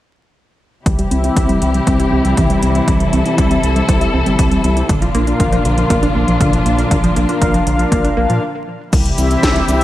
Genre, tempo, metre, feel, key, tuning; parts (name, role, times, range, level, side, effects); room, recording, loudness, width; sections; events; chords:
italo disco; 119 BPM; 4/4; straight; A4 = 440 Hz
muted studio string section; sustained chords; 0.9-9.8 s; Bb2 to A4; -19 LUFS; equal
wide unison pluck; arpeggios; 0.9-8.4 s; D3 to E4; -20 LUFS; right 1 dB; digital delay
round analog bass; bass; 0.9-9.8 s; G1 to Bb2; -18 LUFS; equal
electronic kick drum; drums; 0.9-9.5 s; -17 LUFS; equal; overdrive
house drum kit; drums; 0.9-9.8 s; cabasa, crash cymbal, hi-hat, snare drum; -24 LUFS; equal; overdrive, gated reverb
mellow synth brass; stabs; 1.1-9.8 s; C4 to F5; -19 LUFS; left 2 dB; chorus, digital delay
moderate lush hall reverb, RT60 1.8 s, digital ambience; bright 1980s-style digital production, vinyl crackle; -12 LUFS; side -14 dB against mid
0.9-8.9 A section
filter sweep on analog synth bass 0.9-8.9; filter sweep on synth arpeggio sound 0.9-8.9; filter sweep on analog polysynth 0.9-8.9; stop 8.4-8.9
0.9 C; 4.9 Bb; 8.9 C